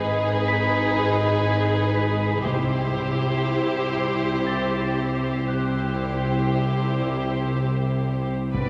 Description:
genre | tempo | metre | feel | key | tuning
cinematic, suspense film score | 60 BPM | 3/4 | straight | unclear | A4 = 440 Hz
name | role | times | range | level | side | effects
rich studio violin section | melody | 0.0-8.7 s | B4 to D5 | -32 LUFS | equal | none
rich studio violin section | second line | 0.0-8.7 s | G4 to B4 | -30 LUFS | equal | none
rich studio viola section | accompaniment | 0.0-8.7 s | D4 to E4 | -33 LUFS | equal | none
concert harp | riff | 0.0-8.7 s | G#2 to C4 | -31 LUFS | equal | none
dark studio cello section | bass | 0.0-8.7 s | G#2 to C3 | -35 LUFS | equal | none
rich studio double bass section | bass | 0.0-8.7 s | G#1 to C2 | -32 LUFS | equal | none
analog drone | drone | 0.0-8.7 s | G#1 to C2 | -31 LUFS | equal | chorus
celesta | texture | 0.5-8.6 s | B5 to B6 | -35 LUFS | equal | none
taiko ensemble | drums | 2.5-8.7 s | none | -36 LUFS | equal | none
room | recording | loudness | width
wet concert hall reverb, RT60 2.5 s | none | -23 LUFS | mono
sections
0.0-8.5 A section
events
none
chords
0.0 G#m; 2.5 C

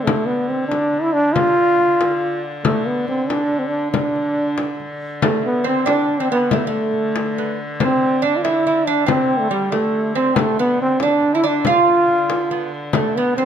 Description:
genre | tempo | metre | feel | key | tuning
medieval dance | 93 BPM (dotted quarters) | 6/8 | straight | D dorian | A4 = 439 Hz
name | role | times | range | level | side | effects
warm trombone | melody | 0.0-13.4 s | G3 to F4 | -18 LUFS | equal | none
rich hurdy-gurdy | drone | 0.0-13.4 s | D3 | -29 LUFS | left 1 dB | none
frame drum | percussion | 0.1-13.4 s | none | -23 LUFS | left 5 dB | none
lute | second line | 5.2-13.4 s | G3 to F4 | -21 LUFS | right 5 dB | none
room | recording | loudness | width
moderate recital hall reverb, RT60 1.6 s | close, detailed microphones | -16 LUFS | side -8 dB against mid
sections
0.0-5.2 A section; 5.2-13.4 A section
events
none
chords
none

